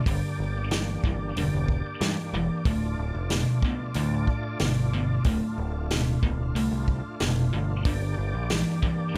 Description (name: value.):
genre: blues rock power trio and southern rock.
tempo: 92 BPM.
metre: 4/4.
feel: straight.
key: D minor.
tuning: A4 = 440 Hz.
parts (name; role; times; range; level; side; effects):
overdriven tonewheel organ; sustained chords; 0.0-9.2 s; A3 to D5; -38 LUFS; equal; chorus vibrato, slow rotary speaker.
distorted electric guitar; riff; 0.0-9.1 s; D2 to E3; -31 LUFS; equal; distortion.
growling picked electric bass; bass; 0.1-9.2 s; D1 to G2; -32 LUFS; equal; overdrive.
vintage drum kit; drums; 0.1-9.2 s; hi-hat, kick drum, snare drum; -30 LUFS; equal; none.
room: moderate club reverb, RT60 0.6 s.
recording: none.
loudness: -27 LUFS.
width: mono.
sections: 0.0-9.2 A section.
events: none.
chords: 0.1 Gm; 2.7 Dm; 7.9 Gm.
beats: | 0.07 0.72 1.37 2.02 | 2.66 3.31 3.96 4.61 | 5.26 5.91 6.56 7.21 | 7.86 8.51 9.16.